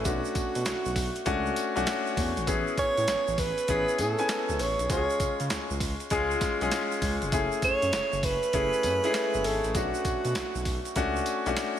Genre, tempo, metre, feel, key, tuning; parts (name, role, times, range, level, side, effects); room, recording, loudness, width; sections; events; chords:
R&B, new jack swing; 99 BPM; 4/4; swing 66% on 16ths; A4 = 442 Hz
breathy alto saxophone; melody; 0.0-11.6 s; F#4 to C#5; -29 LUFS; right 2 dB; ping-pong delay
warm concert grand piano; accompaniment; 0.0-11.8 s; G#3 to G#5; -29 LUFS; left 3 dB
smooth gliding synth bass; bass; 0.0-11.5 s; E#1 to C#3; -34 LUFS; right 1 dB
tube shaker; percussion; 0.0-11.8 s; -43 LUFS; right 12 dB
dusty soul sampler-style drum kit; drums; 0.1-11.8 s; handclaps, hi-hat, kick drum, snare drum, tambourine; -32 LUFS; right 1 dB
light reverb; -25 LUFS; side -10 dB against mid
0.0-11.8 A section
0.1 Bm7; 2.5 Amaj7; 4.9 C#; 7.3 F#m7; 9.7 Bm7